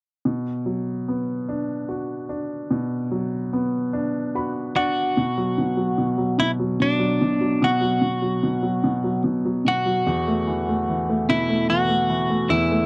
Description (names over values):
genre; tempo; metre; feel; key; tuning
pop; 49 BPM (dotted quarters); 6/8; straight; B minor; A4 = 440 Hz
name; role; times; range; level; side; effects
clear baby grand piano; accompaniment; 0.3-12.9 s; E2 to B5; -25 LUFS; equal; none
clean electric guitar; melody; 4.8-12.9 s; D4 to F#4; -25 LUFS; equal; none
room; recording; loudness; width
light reverb; dry, close 1970s-style studio recording; -23 LUFS; mono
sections
0.2-5.2 A section; 5.2-12.9 B section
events
grand piano fill 3.9-5.2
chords
0.2 Bm; 5.2 B5; 10.1 Esus4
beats
| 0.25 1.48 | 2.70 3.93 | 5.16 6.38 | 7.61 8.83 | 10.06 11.28 | 12.51